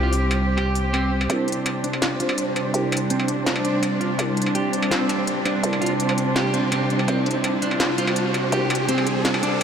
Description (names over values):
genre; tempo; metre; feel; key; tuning
half-time drum and bass; 166 BPM; 4/4; half-time; unclear; A4 = 441 Hz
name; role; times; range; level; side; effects
warm studio cello section; sustained chords; 0.0-9.6 s; C3 to G4; -24 LUFS; right 1 dB; none
clean electric guitar; arpeggios; 0.0-9.6 s; C4 to G4; -27 LUFS; right 2 dB; wide subtle chorus, low-pass filter, tape echo
growling 808-style bass; bass; 0.0-9.6 s; G1 to D2; -28 LUFS; equal; tube saturation, high-pass filter
flickering grainy texture; texture; 0.0-9.6 s; C5; -30 LUFS; equal; built-in reverb, analog chorus
industrial drum kit; drums; 0.1-9.6 s; hi-hat, snare drum, struck metal; -26 LUFS; equal; small room reverb
riser; sound effects; 4.1-9.6 s; none; -30 LUFS; equal; none
room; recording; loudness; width
wet huge ambient reverb, RT60 8.6 s; dreamy mix soaked in reverb; -19 LUFS; side -7 dB against mid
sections
0.0-1.3 A section; 1.3-9.6 B section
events
build-up 1.3-9.6; filter sweep on clean electric guitar 1.3-9.6; riser 4.1-9.6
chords
0.0 C5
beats
0.21 0.57 0.94 | 1.30 1.66 2.02 2.38 | 2.74 3.10 3.46 3.83 | 4.19 4.55 4.91 5.27 | 5.63 6.00 6.36 6.72 | 7.08 7.44 7.80 8.16 | 8.53 8.89 9.25 9.61